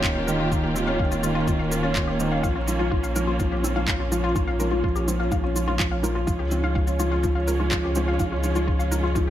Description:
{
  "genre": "piano and strings electronica",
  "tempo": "125 BPM",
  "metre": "4/4",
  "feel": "straight",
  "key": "unclear",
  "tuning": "A4 = 440 Hz",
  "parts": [
    { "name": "dark symphonic string section", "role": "sustained chords", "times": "0.0-9.3 s", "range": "Eb3 to G4", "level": "-30 LUFS", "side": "right 2 dB", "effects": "sidechain pumping" },
    { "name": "analog pluck", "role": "arpeggios", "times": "0.0-9.3 s", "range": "C4 to F5", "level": "-31 LUFS", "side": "left 4 dB", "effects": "chorus, sidechain pumping, tape echo" },
    { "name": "felt-muted upright piano", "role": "riff", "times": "0.0-9.3 s", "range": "Eb3 to F4", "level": "-25 LUFS", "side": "right 1 dB", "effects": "tape echo" },
    { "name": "warm sub bass", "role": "bass", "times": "0.0-9.3 s", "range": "Eb1 to Db2", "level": "-27 LUFS", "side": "equal", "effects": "sidechain pumping" },
    { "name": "electronic handclaps and shaker", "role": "drums", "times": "0.0-9.3 s", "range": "none", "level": "-30 LUFS", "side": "right 1 dB", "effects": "overdrive" },
    { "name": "electronic kick drum", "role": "drums", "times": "0.0-9.3 s", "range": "none", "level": "-26 LUFS", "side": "equal", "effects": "none" }
  ],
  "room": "light reverb, digital ambience",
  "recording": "none",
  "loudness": "-21 LUFS",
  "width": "side -12 dB against mid",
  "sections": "0.0-9.3 A section",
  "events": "none",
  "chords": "0.0 Eb7; 2.4 Bbm; 6.3 Db"
}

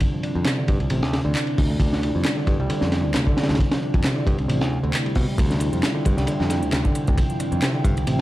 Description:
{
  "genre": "breakbeat, breaks",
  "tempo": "134 BPM",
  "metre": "4/4",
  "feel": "swing 55% on 16ths",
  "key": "D minor",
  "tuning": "A4 = 440 Hz",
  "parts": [
    { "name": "deep dark ambient pad", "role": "sustained chords", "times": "0.0-8.2 s", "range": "C4 to G5", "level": "-30 LUFS", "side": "equal", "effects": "chorus, built-in reverb, vintage 12-bit sampler grit, sidechain pumping" },
    { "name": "overdriven reed electric piano", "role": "riff", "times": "0.0-8.2 s", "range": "C3 to D4", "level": "-24 LUFS", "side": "equal", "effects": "low-pass filter, digital delay" },
    { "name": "crunchy breakbeat drum kit", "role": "drums", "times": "0.0-8.2 s", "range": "hi-hat, kick drum, ride cymbal, snare drum", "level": "-23 LUFS", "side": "equal", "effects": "none" },
    { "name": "modern bright picked electric bass", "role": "bass", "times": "0.4-8.2 s", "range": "A1 to B2", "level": "-24 LUFS", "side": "equal", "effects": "none" },
    { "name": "house drum kit", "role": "drums", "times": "0.5-8.2 s", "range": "handclaps, hi-hat", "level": "-29 LUFS", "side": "equal", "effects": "overdrive" }
  ],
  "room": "moderate small room reverb, RT60 0.5 s",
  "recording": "dark, warm production, vinyl crackle",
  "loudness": "-19 LUFS",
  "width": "side -16 dB against mid",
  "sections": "0.0-8.2 A section",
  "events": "none",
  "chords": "0.0 Dm9"
}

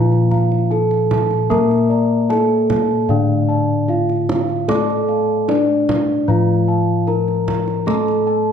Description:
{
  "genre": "Javanese gamelan",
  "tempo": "75 BPM",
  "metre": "4/4",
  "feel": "straight",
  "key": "unclear",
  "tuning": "A4 = 442 Hz",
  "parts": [
    { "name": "gamelan-type bronze metallophone", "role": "melody", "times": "0.0-8.5 s", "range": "D4 to Bb4-20c", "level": "-19 LUFS", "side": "equal", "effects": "none" },
    { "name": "gamelan-type bronze metallophone", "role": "accompaniment", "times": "0.0-8.5 s", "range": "D3 to Bb3-20c", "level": "-21 LUFS", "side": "left 2 dB", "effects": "none" },
    { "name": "gamelan-type bossed gongs", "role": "arpeggios", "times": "0.0-8.5 s", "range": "D5 to Bb5-20c", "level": "-27 LUFS", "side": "left 6 dB", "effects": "none" },
    { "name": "gamelan-type bronze metallophone", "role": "arpeggios", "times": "0.0-8.5 s", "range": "D5 to Bb5-20c", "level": "-26 LUFS", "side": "right 7 dB", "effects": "none" },
    { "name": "gamelan-type bossed gongs", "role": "bass", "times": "0.0-8.5 s", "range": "A2-30c to Bb4-20c", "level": "-20 LUFS", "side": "left 2 dB", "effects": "none" },
    { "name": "kendang", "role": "percussion", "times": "0.1-8.2 s", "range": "none", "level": "-26 LUFS", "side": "right 3 dB", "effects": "none" }
  ],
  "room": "moderate recital hall reverb, RT60 1.4 s",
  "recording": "dark, warm production",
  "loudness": "-14 LUFS",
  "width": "side -8 dB against mid",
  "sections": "0.0-8.5 A section",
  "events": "none",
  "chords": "none"
}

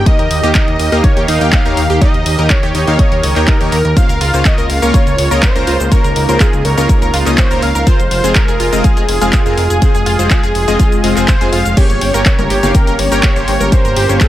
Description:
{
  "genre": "progressive house",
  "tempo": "123 BPM",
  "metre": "4/4",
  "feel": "straight",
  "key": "F minor",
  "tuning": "A4 = 442 Hz",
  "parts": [
    { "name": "wide unison lead", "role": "melody", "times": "0.0-14.3 s", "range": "Ab4 to F5", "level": "-18 LUFS", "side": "right 1 dB", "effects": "digital delay" },
    { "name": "warm analog pad", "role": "sustained chords", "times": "0.0-14.3 s", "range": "Db3 to Bb4", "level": "-22 LUFS", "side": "left 1 dB", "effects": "chorus, sidechain pumping" },
    { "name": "fat analog bass", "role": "bass", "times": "0.0-14.2 s", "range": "F1 to Eb2", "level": "-16 LUFS", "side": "equal", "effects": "sidechain pumping" },
    { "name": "analog pluck", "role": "arpeggios", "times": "0.1-14.3 s", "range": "Eb4 to Bb6", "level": "-20 LUFS", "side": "right 1 dB", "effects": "chorus, sidechain pumping, digital delay" },
    { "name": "supersaw stab", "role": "stabs", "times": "0.1-14.2 s", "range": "Ab3 to G5", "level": "-19 LUFS", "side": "left 1 dB", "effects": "sidechain pumping, digital delay" },
    { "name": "electronic kick drum", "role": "drums", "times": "0.1-14.3 s", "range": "none", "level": "-12 LUFS", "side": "equal", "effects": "none" },
    { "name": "house drum kit", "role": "drums", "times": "0.1-14.3 s", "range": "crash cymbal, handclaps, hi-hat, shaker", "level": "-20 LUFS", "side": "equal", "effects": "none" },
    { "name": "congas", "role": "percussion", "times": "12.4-13.7 s", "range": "none", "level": "-22 LUFS", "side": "left 3 dB", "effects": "sidechain pumping on perc" }
  ],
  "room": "little or no reverb",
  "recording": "none",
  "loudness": "-9 LUFS",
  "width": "side -13 dB against mid",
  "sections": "0.0-14.3 A section",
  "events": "none",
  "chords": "0.1 Eb; 4.0 Bbmadd9/Db; 7.9 Fm; 11.8 Gdim"
}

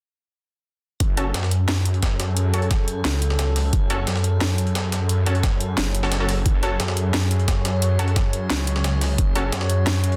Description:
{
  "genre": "dark technical drum and bass",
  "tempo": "176 BPM",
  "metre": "4/4",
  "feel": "straight",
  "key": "F# minor",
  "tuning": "A4 = 440 Hz",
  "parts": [
    { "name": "metallic inharmonic drone", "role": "sustained chords", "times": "1.6-10.2 s", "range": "F#3 to C#5", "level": "-32 LUFS", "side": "equal", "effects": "chorus, built-in reverb, sidechain pumping" },
    { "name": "snarling distorted saw bass", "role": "bass", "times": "1.0-10.2 s", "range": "F#1 to F#2", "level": "-24 LUFS", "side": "equal", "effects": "none" },
    { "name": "breakbeat sampler-style drum kit", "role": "drums", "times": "1.0-10.2 s", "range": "hi-hat, snare drum", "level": "-33 LUFS", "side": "equal", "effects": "high-pass filter on hats, high-pass filter on snare" },
    { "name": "drum and bass drum kit", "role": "drums", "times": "1.0-10.1 s", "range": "hi-hat, snare drum", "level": "-28 LUFS", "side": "equal", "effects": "overdrive" },
    { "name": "electronic kick drum", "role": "drums", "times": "1.0-9.3 s", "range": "none", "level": "-23 LUFS", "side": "equal", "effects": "overdrive" },
    { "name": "orchestra-hit-like synth stab", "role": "stabs", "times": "1.2-9.4 s", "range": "C#4 to A4", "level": "-32 LUFS", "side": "equal", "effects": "built-in reverb, delay" }
  ],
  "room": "little or no reverb",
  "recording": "dense, heavily limited modern master",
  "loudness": "-22 LUFS",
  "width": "mono",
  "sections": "1.0-10.2 A section",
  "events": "none",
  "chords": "1.0 F#m"
}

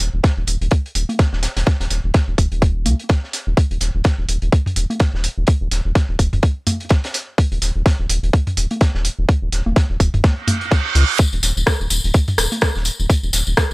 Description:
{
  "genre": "minimal techno",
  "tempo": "126 BPM",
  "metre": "4/4",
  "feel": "swing 58% on 16ths",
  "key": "unclear",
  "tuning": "A4 = 441 Hz",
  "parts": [
    { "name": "round analog bass", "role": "bass", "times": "0.0-13.7 s", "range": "Eb1 to Db2", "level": "-19 LUFS", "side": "equal", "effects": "sidechain pumping" },
    { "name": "crunchy breakbeat drum kit", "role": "drums", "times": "0.0-13.7 s", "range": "hi-hat, snare drum", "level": "-30 LUFS", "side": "equal", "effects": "sidechain pumping on hats, high-pass filter on hats, high-pass filter on snare, high-pass filter on room" },
    { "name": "techno drum kit", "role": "drums", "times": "0.0-13.7 s", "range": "hi-hat, rim click", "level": "-21 LUFS", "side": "right 1 dB", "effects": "none" },
    { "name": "electronic kick drum", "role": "drums", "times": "0.2-13.7 s", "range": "none", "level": "-14 LUFS", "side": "equal", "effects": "none" },
    { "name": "electronic congas and toms", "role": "percussion", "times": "1.1-12.6 s", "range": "none", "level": "-22 LUFS", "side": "equal", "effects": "none" },
    { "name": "reverse cymbal", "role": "sound effects", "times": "10.4-11.2 s", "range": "none", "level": "-20 LUFS", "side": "right 7 dB", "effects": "none" },
    { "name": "tambourine", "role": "percussion", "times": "11.2-13.7 s", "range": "none", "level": "-23 LUFS", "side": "left 2 dB", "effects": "none" }
  ],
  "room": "small room ambience",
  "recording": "dry, gritty hardware recording",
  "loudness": "-16 LUFS",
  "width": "side -22 dB against mid",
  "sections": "0.0-13.7 A section",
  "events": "reverse cymbal 10.4-11.2",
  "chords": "none"
}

